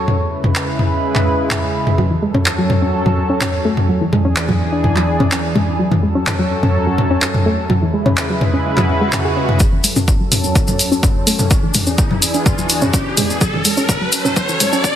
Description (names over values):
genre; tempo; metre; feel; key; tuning
melodic techno; 126 BPM; 4/4; straight; F# minor; A4 = 440 Hz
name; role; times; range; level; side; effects
lush unison pad; sustained chords; 0.0-15.0 s; E2 to B4; -20 LUFS; equal; chorus, tremolo, sidechain pumping
punchy analog drum machine; drums; 0.1-14.7 s; handclaps, hi-hat, toms; -18 LUFS; equal; sidechain pumping on toms, sidechain pumping on hats
soft round pluck; arpeggios; 2.0-14.8 s; E3 to G#4; -20 LUFS; equal; chorus, sidechain pumping, digital delay
swell and riser; sound effects; 8.8-15.0 s; none; -23 LUFS; equal; none
electronic kick drum; drums; 9.6-14.9 s; none; -16 LUFS; equal; none
cabasa; percussion; 9.6-14.9 s; none; -20 LUFS; left 2 dB; none
room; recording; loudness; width
light reverb, digital ambience; dense, heavily limited modern master, high-pass filter; -13 LUFS; side -10 dB against mid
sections
0.0-9.6 A section; 9.6-15.0 B section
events
filter sweep on analog synth pad 0.0-9.6, 9.6-15.0; swell 8.8-9.6; build-up 9.6-15.0; riser 9.6-15.0; filter sweep 9.6-15.0; drum fill 13.4-15.0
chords
0.1 C#m7; 2.0 F#m; 3.9 E7; 5.8 F#m; 7.7 C#m7; 9.6 F#m; 11.5 E7; 13.4 F#m